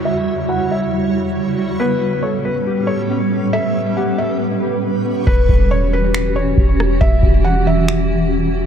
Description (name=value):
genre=hip hop, atmospheric cloud-rap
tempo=138 BPM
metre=4/4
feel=half-time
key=E dorian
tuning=A4 = 437 Hz
part: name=granular cloud pad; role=sustained chords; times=0.0-8.7 s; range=E2 to B4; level=-18 LUFS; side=right 2 dB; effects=built-in reverb, sidechain pumping, low-pass filter
part: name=warbly lo-fi synth keys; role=arpeggios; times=0.0-5.3 s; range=G3 to A4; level=-24 LUFS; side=left 1 dB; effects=chorus, low-pass filter, ping-pong delay
part: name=downlifter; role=sound effects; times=0.0-1.8 s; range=none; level=-38 LUFS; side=right 1 dB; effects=none
part: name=backwards swelling texture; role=texture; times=0.0-5.2 s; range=G3 to C#5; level=-31 LUFS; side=right 2 dB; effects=built-in reverb
part: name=felt-muted upright piano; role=melody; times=0.1-8.3 s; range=B4 to F#5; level=-22 LUFS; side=left 1 dB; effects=low-pass filter, ping-pong delay
part: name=warm 808-style bass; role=bass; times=5.3-8.7 s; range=E1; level=-18 LUFS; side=equal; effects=none
part: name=booming analog drum machine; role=drums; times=5.3-8.0 s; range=finger snaps, kick drum, rim click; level=-15 LUFS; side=equal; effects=none
room=digital ambience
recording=dark, warm production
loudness=-14 LUFS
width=side -8 dB against mid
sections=0.0-5.3 A section; 5.3-8.7 B section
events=filter sweep 0.0-5.3; hi-hats muted 5.3-8.7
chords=0.0 Em69; 1.8 A9; 5.3 Em69